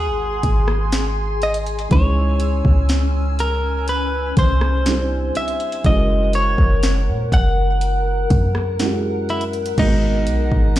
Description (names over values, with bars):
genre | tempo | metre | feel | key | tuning
contemporary R&B | 61 BPM | 4/4 | straight | unclear | A4 = 440 Hz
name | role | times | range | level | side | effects
direct-recorded clean electric guitar | melody | 0.0-10.8 s | D#4 to F#5 | -23 LUFS | equal | digital delay
felt-muted upright piano | accompaniment | 0.0-10.8 s | B2 to C5 | -26 LUFS | right 3 dB | none
glassy FM pad | sustained chords | 0.0-10.8 s | C#4 to E6 | -26 LUFS | left 2 dB | ensemble chorus, built-in reverb
clean 808-style bass | bass | 0.0-10.8 s | F#1 to A#2 | -19 LUFS | equal | none
smooth R&B drum kit | drums | 0.4-10.8 s | crash cymbal, hi-hat, kick drum, rim click, snare drum | -19 LUFS | equal | overdrive
room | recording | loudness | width
little or no reverb | played on a big sound system in a bare room, stone room reverb | -16 LUFS | side -14 dB against mid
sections
0.0-9.8 A section; 9.8-10.8 A section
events
none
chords
0.0 G#7; 1.9 C#m; 4.9 C; 5.8 F#7; 9.8 G#m7